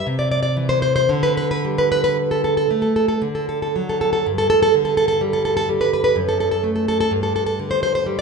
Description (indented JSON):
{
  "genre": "romantic piece for solo classical guitar",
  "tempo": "55-64 BPM",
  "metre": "3/4",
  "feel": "rubato",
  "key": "G major",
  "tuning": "A4 = 440 Hz",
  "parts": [
    { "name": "nylon-string guitar", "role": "solo", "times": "0.0-8.2 s", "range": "F#2 to D5", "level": "-17 LUFS", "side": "right 1 dB", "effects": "none" }
  ],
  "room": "wet recital hall reverb, RT60 1.5 s",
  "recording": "recorded in a church or concert hall, nothing above 10.7 kHz",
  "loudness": "-17 LUFS",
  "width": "side -4 dB against mid",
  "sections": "0.0-4.3 A section; 4.3-8.2 B section",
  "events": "none",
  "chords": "0.1 Cadd9; 1.1 Dsus4; 3.2 D; 4.3 G5; 6.2 F#m; 7.1 G5",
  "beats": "0.05 | 1.09 2.17 3.21 | 4.26 5.22 6.16 | 7.11 8.06"
}